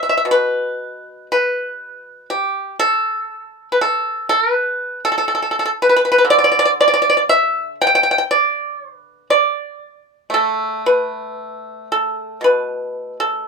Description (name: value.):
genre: chinese traditional, Chinese solo plucked strings.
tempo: 59 BPM.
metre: 4/4.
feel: rubato.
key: unclear.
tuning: A4 = 442 Hz.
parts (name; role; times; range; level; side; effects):
pipa; solo; 0.0-13.5 s; B2 to G5; -15 LUFS; equal; none.
room: light reverb.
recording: minimal, uncompressed stereo recording.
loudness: -15 LUFS.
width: side -4 dB against mid.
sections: 0.0-13.5 A section.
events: none.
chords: none.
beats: | 0.27 1.28 2.27 3.28 | 4.28 5.28 6.27 7.26 | 8.27 9.29 10.31 11.37 | 12.41 13.45.